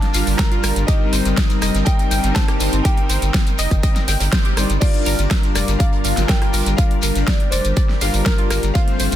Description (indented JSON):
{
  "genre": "progressive house",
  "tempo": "122 BPM",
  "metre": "4/4",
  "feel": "straight",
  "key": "G minor",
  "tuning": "A4 = 440 Hz",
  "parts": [
    { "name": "dark grand piano", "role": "melody", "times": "0.0-9.2 s", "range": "Bb4 to Bb5", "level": "-28 LUFS", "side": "equal", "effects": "tape echo" },
    { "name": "lush unison pad", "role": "sustained chords", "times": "0.0-9.2 s", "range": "G3 to C5", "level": "-28 LUFS", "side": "right 1 dB", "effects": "chorus, phaser, sidechain pumping" },
    { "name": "big-room dance drum kit", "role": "drums", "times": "0.0-9.2 s", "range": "crash cymbal, hi-hat, rim click, snare drum", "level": "-24 LUFS", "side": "right 1 dB", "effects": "overdrive" },
    { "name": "glassy wavetable pluck", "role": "arpeggios", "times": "0.1-9.1 s", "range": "F4 to G6", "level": "-28 LUFS", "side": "equal", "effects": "chorus, sidechain pumping, tape echo" },
    { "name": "soft supersaw", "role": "stabs", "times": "0.1-9.2 s", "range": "G2 to D5", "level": "-24 LUFS", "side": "left 2 dB", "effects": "sidechain pumping, tape echo" },
    { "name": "round analog bass", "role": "bass", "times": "0.1-9.2 s", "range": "F1 to G1", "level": "-20 LUFS", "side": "equal", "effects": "sidechain pumping" },
    { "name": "warm soul drum kit", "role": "drums", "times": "0.1-9.1 s", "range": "hi-hat, snare drum", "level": "-32 LUFS", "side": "right 4 dB", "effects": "none" },
    { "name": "shekere", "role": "percussion", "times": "0.1-9.2 s", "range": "none", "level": "-29 LUFS", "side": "left 7 dB", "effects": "none" },
    { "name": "electronic kick drum", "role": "drums", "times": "0.4-8.9 s", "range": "none", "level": "-17 LUFS", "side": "equal", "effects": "overdrive" }
  ],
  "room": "small room reverb",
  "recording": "dense, heavily limited modern master",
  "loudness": "-15 LUFS",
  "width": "side -12 dB against mid",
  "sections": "0.0-4.8 A section; 4.8-9.2 A section",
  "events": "drop 0.0-4.8, 4.8-9.2; band accent 4.3",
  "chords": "0.0 Gm7; 0.9 Cm7; 4.8 Gm7",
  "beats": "0.39 | 0.88 1.37 1.87 2.36 | 2.85 3.34 3.83 4.33 | 4.82 5.31 5.80 6.29 | 6.78 7.28 7.77 8.26 | 8.75"
}